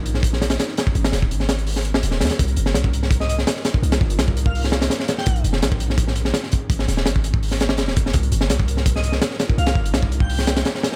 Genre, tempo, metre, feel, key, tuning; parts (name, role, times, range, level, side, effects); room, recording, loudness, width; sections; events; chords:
drum and bass, jungle; 167 BPM; 4/4; straight; A4 = 440 Hz
ethereal airy pad; sustained chords; 0.0-11.0 s; Cb4 to Bb4; -37 LUFS; equal
long sustained 808-style bass; bass; 0.0-10.6 s; Eb1 to Eb2; -24 LUFS; equal
crunchy breakbeat drum kit; drums; 0.1-11.0 s; hi-hat, kick drum, snare drum; -22 LUFS; equal
airy dreamy lead; melody; 3.2-5.3, 9.0-10.6 s; Eb5 to G5; -33 LUFS; equal; chorus, phaser, dub echo
little or no reverb; -20 LUFS; mono
0.0-11.0 A section
0.0 Bbm11; 1.0 Abm11; 2.4 Cm11; 5.3 Bbm11; 6.7 Abm11; 8.1 Cm11